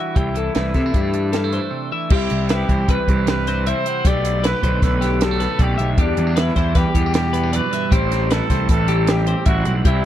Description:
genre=math rock and midwest emo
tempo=155 BPM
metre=5/4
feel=straight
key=C major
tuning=A4 = 442 Hz
part: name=warm trumpet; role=melody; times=0.0-10.1 s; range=D4 to D5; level=-24 LUFS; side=equal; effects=none
part: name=twelve-string electric guitar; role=accompaniment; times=0.0-10.1 s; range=E2 to G4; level=-26 LUFS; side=right 9 dB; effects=spring reverb
part: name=twelve-string electric guitar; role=arpeggios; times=0.0-10.1 s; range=G4 to F#5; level=-26 LUFS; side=left 11 dB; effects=wide subtle chorus
part: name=fuzz picked electric bass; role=bass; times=0.2-10.0 s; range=A1 to C3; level=-20 LUFS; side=equal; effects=overdrive
part: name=compact cocktail drum kit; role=drums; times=0.2-9.9 s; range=crash cymbal, hi-hat, kick drum, snare drum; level=-20 LUFS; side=equal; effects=none
room=little or no reverb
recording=dry, close 1970s-style studio recording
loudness=-16 LUFS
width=side -12 dB against mid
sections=0.0-2.1 A section; 2.1-10.1 B section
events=break 1.7-2.1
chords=0.2 C69; 2.1 Cmaj7; 4.0 Gadd9/B; 6.0 Em7; 7.9 Am7

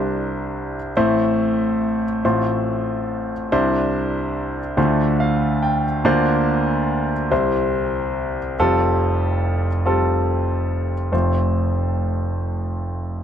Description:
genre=folk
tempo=47 BPM (dotted quarters)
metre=6/8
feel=straight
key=F major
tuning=A4 = 442 Hz
part: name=clear grand piano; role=solo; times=0.0-13.2 s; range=F1 to G5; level=-18 LUFS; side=equal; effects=none
room=little or no reverb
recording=none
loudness=-18 LUFS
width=side -9 dB against mid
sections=0.0-11.1 A section; 11.1-13.2 B section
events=none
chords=0.0 Cadd9; 1.0 Am; 2.2 F/A; 3.5 Cadd9; 4.8 Dm7; 6.0 Bbadd9/D; 7.3 C; 8.6 Fadd9; 11.1 F

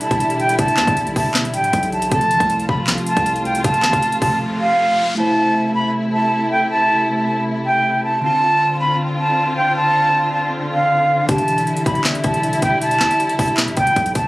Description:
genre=hip hop, trap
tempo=157 BPM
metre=4/4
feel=half-time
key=A minor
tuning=A4 = 439 Hz
part: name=breathy concert flute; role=melody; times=0.0-14.3 s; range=F5 to B5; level=-17 LUFS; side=right 1 dB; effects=low-pass filter, tape echo
part: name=glassy digital keys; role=accompaniment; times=0.0-14.3 s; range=D3 to C5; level=-26 LUFS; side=equal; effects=chorus, low-pass filter
part: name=dark symphonic string section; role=sustained chords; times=0.0-14.3 s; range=C3 to F4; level=-22 LUFS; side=left 1 dB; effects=none
part: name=trap drum kit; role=drums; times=0.0-4.3, 11.3-14.2 s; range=handclaps, hi-hat, kick drum, snare drum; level=-21 LUFS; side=equal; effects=overdrive
part: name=hard-hitting 808-style bass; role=bass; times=0.1-4.4, 11.3-14.3 s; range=D1 to E2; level=-25 LUFS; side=equal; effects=none
part: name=riser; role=sound effects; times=4.3-5.2 s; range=none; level=-29 LUFS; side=left 2 dB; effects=none
room=little or no reverb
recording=recorded on a phone in the room, club reverb, compression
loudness=-15 LUFS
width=side -19 dB against mid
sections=0.0-5.2 A section; 5.2-14.3 B section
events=riser 4.3-5.2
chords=0.0 Em7; 2.1 F; 5.2 Am; 8.2 Dm7; 11.3 Em7

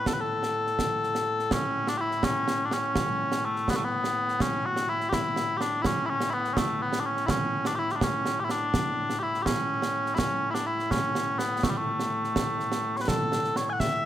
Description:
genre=scottish traditional, Scottish pipe music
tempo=83 BPM (dotted quarters)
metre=6/8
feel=straight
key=A major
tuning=A4 = 441 Hz
part: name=mellow small bagpipes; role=melody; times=0.0-14.1 s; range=A2 to G#5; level=-26 LUFS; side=left 1 dB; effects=none
part: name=concert snare drum and concert bass drum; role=drums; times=0.1-13.9 s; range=none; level=-30 LUFS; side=right 2 dB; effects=none
room=moderate scoring stage reverb, RT60 1.9 s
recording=none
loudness=-25 LUFS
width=side -11 dB against mid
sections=0.0-1.5 A section; 1.5-13.1 A section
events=none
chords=none

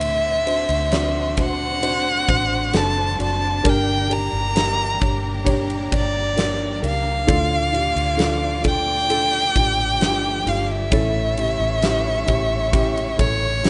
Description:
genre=pop ballad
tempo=66 BPM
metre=4/4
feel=straight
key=unclear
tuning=A4 = 438 Hz
part: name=warm violin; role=melody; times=0.0-13.7 s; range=C#5 to Bb5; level=-24 LUFS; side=equal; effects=none
part: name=rich studio violin section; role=second line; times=0.0-13.7 s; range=Bb4 to D6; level=-37 LUFS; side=equal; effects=none
part: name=felt-muted upright piano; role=accompaniment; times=0.0-13.7 s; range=G2 to D5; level=-28 LUFS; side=equal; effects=none
part: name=bright studio string section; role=sustained chords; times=0.0-13.7 s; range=C#3 to G4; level=-36 LUFS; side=equal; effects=none
part: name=vintage muted fingered electric bass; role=bass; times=0.0-13.7 s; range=F#1 to D2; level=-28 LUFS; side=equal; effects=none
part: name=huge arena drum kit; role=drums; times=0.0-13.7 s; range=kick drum, ride cymbal, snare drum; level=-27 LUFS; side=equal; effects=none
room=light reverb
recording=rough home demo mix, nothing above 10.5 kHz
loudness=-20 LUFS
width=mono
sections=0.0-13.7 A section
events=none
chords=0.0 D7; 3.6 Gm; 7.3 Dm; 10.9 A

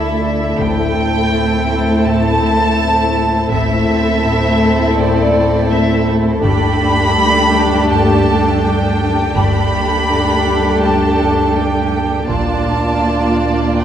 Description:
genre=cinematic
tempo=82 BPM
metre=4/4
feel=straight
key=unclear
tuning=A4 = 441 Hz
part: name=warm chamber violin section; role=melody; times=0.0-13.8 s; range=D5 to B5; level=-18 LUFS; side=equal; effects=none
part: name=warm studio violin section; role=second line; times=0.0-13.8 s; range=E4 to D5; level=-19 LUFS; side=right 1 dB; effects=none
part: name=rich studio viola section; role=accompaniment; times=0.0-13.8 s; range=A3 to E4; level=-19 LUFS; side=equal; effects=none
part: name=concert harp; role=riff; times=0.0-13.8 s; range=G2 to D4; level=-21 LUFS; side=left 7 dB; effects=none
part: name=warm chamber cello section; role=bass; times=0.0-13.8 s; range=D2 to Bb2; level=-20 LUFS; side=right 3 dB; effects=none
part: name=punchy sub bass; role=drone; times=0.0-13.8 s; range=D2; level=-22 LUFS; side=equal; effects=none
part: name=warm symphonic violin section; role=texture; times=0.0-0.2, 6.5-11.9 s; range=G5 to C6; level=-28 LUFS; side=left 4 dB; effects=none
part: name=warm chamber double bass section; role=bass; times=0.6-13.0 s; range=G1 to Bb1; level=-23 LUFS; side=right 3 dB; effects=none
room=moderate scoring stage reverb, RT60 1.9 s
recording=none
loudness=-12 LUFS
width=side -9 dB against mid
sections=0.0-13.8 A section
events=none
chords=0.0 Dsus2; 0.6 Am7; 6.4 Gadd9; 12.3 Bb6

